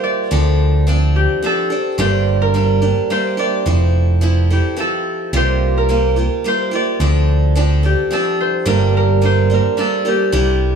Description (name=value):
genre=rock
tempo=108 BPM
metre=3/4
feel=straight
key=G dorian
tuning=A4 = 435 Hz
part: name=concert harp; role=melody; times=0.0-10.8 s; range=G4 to D5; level=-19 LUFS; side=equal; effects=none
part: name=picked old ladder-braced acoustic guitar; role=accompaniment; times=0.0-10.8 s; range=G2 to A4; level=-20 LUFS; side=right 2 dB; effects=none
part: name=picked electric bass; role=bass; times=0.3-10.8 s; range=F1 to D2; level=-14 LUFS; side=right 1 dB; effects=none
room=light reverb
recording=studio reverb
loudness=-13 LUFS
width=side -6 dB against mid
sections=0.0-10.8 A section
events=none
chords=0.3 Dm7; 2.0 Gm; 3.7 Fmaj7; 5.3 C7sus4; 7.0 Dm7; 8.7 Gm